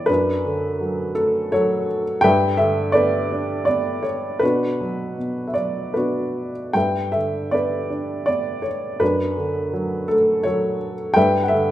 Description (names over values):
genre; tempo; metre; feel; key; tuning
classical, lyrical solo piano; 74-87 BPM; 3/4; rubato; D major; A4 = 440 Hz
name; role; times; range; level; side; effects
dark upright piano; solo; 0.0-11.7 s; F#2 to G5; -18 LUFS; equal; none
room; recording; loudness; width
moderate recital hall reverb, RT60 1.6 s; minimal, uncompressed stereo recording; -19 LUFS; side -13 dB against mid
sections
0.0-11.7 A section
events
none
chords
0.1 D/F#; 2.2 G6; 4.4 Bm; 6.8 G6; 9.0 D/F#; 11.2 G6